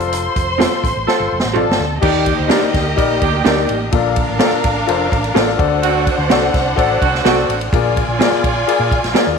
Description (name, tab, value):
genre	uptempo 1960s-style soul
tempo	126 BPM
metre	4/4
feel	straight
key	Bb major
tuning	A4 = 440 Hz
part	warm studio string section	second line	0.0-9.4 s	Bb3 to C6	-20 LUFS	equal	none
part	warm grand piano	accompaniment	0.0-9.4 s	Bb2 to D5	-19 LUFS	left 11 dB	none
part	fingered electric bass	bass	0.0-9.4 s	F1 to Bb2	-23 LUFS	right 1 dB	none
part	swinging big-band drum kit	drums	0.0-9.3 s	crash cymbal, hi-hat, kick drum, ride cymbal, snare drum, toms	-19 LUFS	right 1 dB	none
part	electric guitar through a small old amp	stabs	0.6-9.2 s	Bb3 to D5	-22 LUFS	right 12 dB	tube saturation, analog chorus
part	edgy saxophone section	second line	1.1-7.6 s	D3 to C5	-21 LUFS	right 13 dB	none
room	moderate echo chamber reverb, RT60 2.1 s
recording	1960s-style stereo with parts hard left and right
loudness	-13 LUFS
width	side -5 dB against mid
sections	0.0-2.0 A section; 2.0-9.4 B section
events	band accent 0.1-2.0; drum fill 1.1-2.0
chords	0.0 F; 2.0 Ebmaj7; 3.9 Bbmaj7; 5.6 D7; 7.7 Bb7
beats	| 0.12 0.59 1.07 1.55 | 2.02 2.50 2.97 3.45 | 3.93 4.40 4.88 5.35 | 5.83 6.30 6.78 7.25 | 7.72 8.20 8.67 9.15